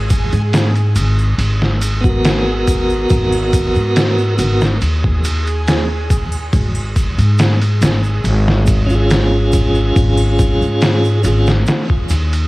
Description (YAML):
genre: trip hop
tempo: 70 BPM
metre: 4/4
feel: straight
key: G# dorian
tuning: A4 = 440 Hz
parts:
  - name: upright bass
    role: bass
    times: 0.0-12.5 s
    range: G#1 to G#2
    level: -15 LUFS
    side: equal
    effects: none
  - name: backwards swelling texture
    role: texture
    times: 0.0-12.5 s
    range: G#4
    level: -30 LUFS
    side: right 3 dB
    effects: built-in reverb, cassette tape
  - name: trip hop sampler-style drum kit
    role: drums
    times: 0.1-12.5 s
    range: kick drum, ride cymbal, snare drum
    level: -17 LUFS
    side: equal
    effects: overdrive, studio reverb, cassette tape
  - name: tube shaker and triangle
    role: percussion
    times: 0.1-12.5 s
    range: none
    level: -34 LUFS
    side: right 2 dB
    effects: none
  - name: tonewheel organ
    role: accompaniment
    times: 2.0-11.5 s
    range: B3 to A#4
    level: -18 LUFS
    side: equal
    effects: overdrive, stopped rotary speaker, tremolo, cassette tape, tape echo
room: little or no reverb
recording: home recording on cassette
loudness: -12 LUFS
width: side -20 dB against mid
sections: 0.0-12.5 A section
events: none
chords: 0.0 G#m9; 6.5 C#/G#